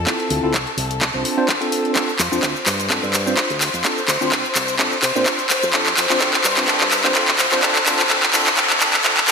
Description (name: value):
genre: filtered disco house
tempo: 127 BPM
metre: 4/4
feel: swing 55% on 16ths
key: unclear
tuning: A4 = 440 Hz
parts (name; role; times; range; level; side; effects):
- dark studio string section; sustained chords; 0.0-9.3 s; A4 to C5; -27 LUFS; left 4 dB; sidechain pumping, low-pass filter
- fingered electric bass with an envelope filter; bass; 0.0-8.8 s; C2 to C3; -28 LUFS; equal; sidechain pumping, low-pass filter
- tine electric piano; accompaniment; 0.1-9.3 s; C4 to C5; -23 LUFS; right 1 dB; phaser, vintage 12-bit sampler grit, sidechain pumping, low-pass filter
- electronic kick drum; drums; 0.1-9.1 s; none; -26 LUFS; equal; overdrive, high-pass filter on kick
- house drum kit; drums; 0.1-9.3 s; cabasa, handclaps, hi-hat; -16 LUFS; equal; overdrive, sidechain pumping on hats, sidechain pumping on perc, gated reverb
room: wet lush hall reverb, RT60 2.0 s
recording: bright 1980s-style digital production, high-pass filter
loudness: -15 LUFS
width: side -5 dB against mid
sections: 0.0-9.3 A section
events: build-up 0.0-9.3; drum fill 0.0-9.3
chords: 0.0 Dm9; 1.0 Csus24; 2.0 G9sus4; 3.6 Dm7; 4.8 Csus4; 5.7 G9sus4; 7.4 Dm7